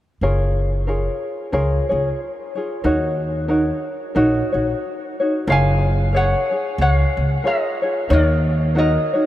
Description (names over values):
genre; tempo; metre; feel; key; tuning
Hawaiian; 91 BPM; 4/4; swing 58% on 8ths; F# major; A4 = 440 Hz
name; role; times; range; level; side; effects
tenor ukulele; accompaniment; 0.2-9.3 s; D#4 to C#5; -20 LUFS; left 1 dB; none
upright bass; bass; 0.2-9.0 s; F#1 to D#2; -19 LUFS; equal; none
ukulele; melody; 5.5-9.3 s; A#4 to G#5; -22 LUFS; equal; none
room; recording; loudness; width
moderate huge ambient reverb, RT60 8.1 s; in a vast, echoing space; -17 LUFS; side -14 dB against mid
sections
0.2-5.5 A section; 5.5-9.3 B section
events
none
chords
0.2 F#maj9; 2.8 D#m7; 5.5 F#maj9; 8.1 D#m7